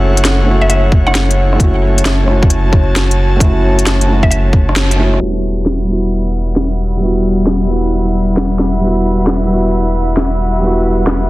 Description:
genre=future garage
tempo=133 BPM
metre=4/4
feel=swing 67% on 16ths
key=E dorian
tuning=A4 = 435 Hz
part: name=felt-muted upright piano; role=accompaniment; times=0.0-11.3 s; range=G3 to F#4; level=-17 LUFS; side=equal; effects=vintage 12-bit sampler grit, sidechain pumping, tape echo
part: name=airy breathy pad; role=sustained chords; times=0.0-11.3 s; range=G3 to B5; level=-20 LUFS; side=left 1 dB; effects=chorus, vintage 12-bit sampler grit, sidechain pumping
part: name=warm sub bass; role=bass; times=0.0-11.3 s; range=E1 to F#1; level=-14 LUFS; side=equal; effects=sidechain pumping
part: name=organic electronic drum kit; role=drums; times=0.2-11.2 s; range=hi-hat, rim click, snare drum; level=-17 LUFS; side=equal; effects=none
part: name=mallet-like synth pluck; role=melody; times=0.6-1.2, 4.2-4.4 s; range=E5 to F#5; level=-21 LUFS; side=equal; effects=chorus, tape echo
part: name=electronic kick drum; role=drums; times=0.9-4.7 s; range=none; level=-10 LUFS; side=equal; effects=none
part: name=backwards swelling texture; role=texture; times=6.5-11.3 s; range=E4 to E5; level=-26 LUFS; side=equal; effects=built-in reverb
room=light reverb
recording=dense, heavily limited modern master, vinyl crackle, low-pass filter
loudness=-10 LUFS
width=side -18 dB against mid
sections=0.0-5.2 A section; 5.2-11.3 B section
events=band accent 4.8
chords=0.0 F#m7; 5.2 Emadd9

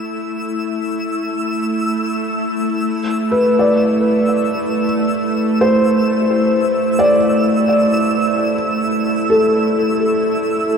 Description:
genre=ambient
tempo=free time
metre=none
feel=none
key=unclear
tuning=A4 = 439 Hz
part: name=bowed-like drone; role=drone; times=0.0-10.8 s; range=A3 to E4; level=-18 LUFS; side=right 1 dB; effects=built-in reverb
part: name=twinkling granular texture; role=texture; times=0.0-10.8 s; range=E6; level=-24 LUFS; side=right 1 dB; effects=built-in reverb
part: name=felt-muted upright piano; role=arpeggios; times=3.3-10.8 s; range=A4 to D5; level=-16 LUFS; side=left 1 dB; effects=tape echo
room=wet cathedral reverb, RT60 6.4 s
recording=dark, warm production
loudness=-14 LUFS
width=side -6 dB against mid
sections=0.0-10.8 A section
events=fade-in on synth drone 0.0-10.8; fade-in on synth texture 0.0-10.8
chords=0.0 A5; 2.8 D7(no3)

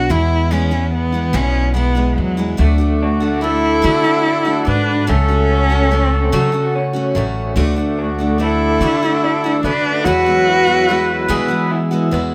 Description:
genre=acoustic folk duo or small band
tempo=48 BPM (dotted quarters)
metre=6/8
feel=straight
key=unclear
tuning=A4 = 440 Hz
part: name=warm cello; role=melody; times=0.0-11.7 s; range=F#3 to F#4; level=-20 LUFS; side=equal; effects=none
part: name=picked steel-string acoustic guitar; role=accompaniment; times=0.0-12.3 s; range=E2 to F#4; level=-24 LUFS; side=equal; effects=none
part: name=upright bass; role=bass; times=0.0-12.3 s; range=A1 to E3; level=-21 LUFS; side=equal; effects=none
part: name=mellow tonewheel organ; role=sustained chords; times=2.6-12.3 s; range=G#4 to E6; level=-32 LUFS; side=equal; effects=slow rotary speaker
part: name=electric guitar through a small old amp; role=arpeggios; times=2.6-12.3 s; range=F#3 to G#4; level=-26 LUFS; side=equal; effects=tremolo
part: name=accordion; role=second line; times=3.0-11.7 s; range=F#4 to B4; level=-23 LUFS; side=equal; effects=none
room=light reverb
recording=close, detailed microphones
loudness=-16 LUFS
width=mono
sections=0.0-2.6 A section; 2.6-12.3 B section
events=cello solo 0.0-2.6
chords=0.1 E; 2.6 D; 5.1 F#m/C#; 7.6 D; 10.1 Eadd9

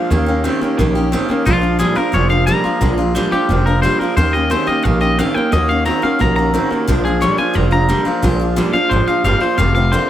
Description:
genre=rockabilly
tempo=177 BPM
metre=4/4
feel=straight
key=Bb mixolydian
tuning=A4 = 440 Hz
part: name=twangy electric guitar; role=melody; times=0.0-10.1 s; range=F4 to Bb5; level=-19 LUFS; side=left 2 dB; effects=tape echo
part: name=picked steel-string acoustic guitar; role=accompaniment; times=0.0-10.1 s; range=F2 to G4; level=-20 LUFS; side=left 4 dB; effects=none
part: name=electric guitar through a small old amp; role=riff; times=0.0-10.1 s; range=F2 to C4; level=-19 LUFS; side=right 4 dB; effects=none
part: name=upright bass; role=bass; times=0.1-9.9 s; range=F1 to Eb2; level=-17 LUFS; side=equal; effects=none
room=moderate studio reverb, RT60 0.5 s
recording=none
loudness=-13 LUFS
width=side -11 dB against mid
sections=0.0-10.1 A section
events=clean electric guitar solo 0.0-10.1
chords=0.1 Eb7; 1.5 Bb7; 4.2 Eb7; 5.5 Ebm7; 6.9 Bb7; 9.6 F7

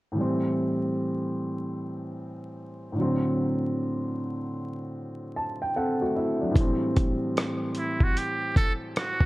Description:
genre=lo-fi hip hop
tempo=75 BPM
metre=4/4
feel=swing 63% on 16ths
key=A dorian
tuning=A4 = 440 Hz
part: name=dark upright piano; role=accompaniment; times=0.1-9.3 s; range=A2 to A5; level=-27 LUFS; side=equal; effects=low-pass filter
part: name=dusty soul sampler-style drum kit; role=drums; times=6.6-9.3 s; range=hi-hat, kick drum, rim click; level=-24 LUFS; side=equal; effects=none
part: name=trumpet with metal mute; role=melody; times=7.8-9.3 s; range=E4 to A4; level=-28 LUFS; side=right 2 dB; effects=low-pass filter
room=light reverb, studio reverb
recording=vinyl crackle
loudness=-25 LUFS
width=side -19 dB against mid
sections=0.2-6.6 A section; 6.6-9.3 B section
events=upright piano fill 5.0-6.6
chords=0.2 Am7; 3.0 D7/A

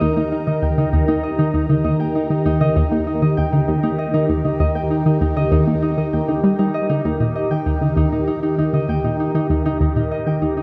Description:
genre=ambient, sequencer-driven space music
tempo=98 BPM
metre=4/4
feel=straight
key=unclear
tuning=A4 = 441 Hz
part: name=phased analog pad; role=sustained chords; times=0.0-10.6 s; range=Eb3 to Bb5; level=-24 LUFS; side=equal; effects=phaser, chorus
part: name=concert harp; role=arpeggios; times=0.0-10.6 s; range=Eb4 to G5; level=-24 LUFS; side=equal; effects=analog delay
part: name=analog pluck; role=riff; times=0.0-10.6 s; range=Eb2 to Bb3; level=-22 LUFS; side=equal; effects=chorus, analog delay
room=wet concert hall reverb, RT60 2.2 s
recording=dark, warm production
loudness=-19 LUFS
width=mono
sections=0.0-10.6 A section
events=filter sweep on synth arpeggio sound 0.0-10.6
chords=0.0 Eb

